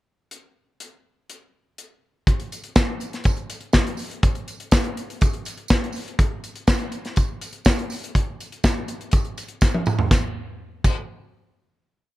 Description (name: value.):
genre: disco.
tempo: 123 BPM.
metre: 4/4.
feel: straight.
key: none.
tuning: none.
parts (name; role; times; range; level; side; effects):
modern studio drum kit; drums; 0.3-11.0 s; crash cymbal, hi-hat, kick drum, snare drum, toms; -19 LUFS; equal; none.
tambourine; percussion; 2.5-11.1 s; none; -37 LUFS; right 5 dB; none.
room: light reverb.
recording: dark, warm production.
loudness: -20 LUFS.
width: side -17 dB against mid.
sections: 0.3-2.3 pickup bar; 2.3-10.1 pre-chorus; 10.1-12.1 final hit.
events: drum fill 9.6-10.1.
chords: none.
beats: | 0.32 0.81 1.29 1.78 | 2.27 2.76 3.25 3.74 | 4.23 4.72 5.21 5.70 | 6.19 6.68 7.17 7.66 | 8.15 8.64 9.13 9.62 | 10.11 10.60.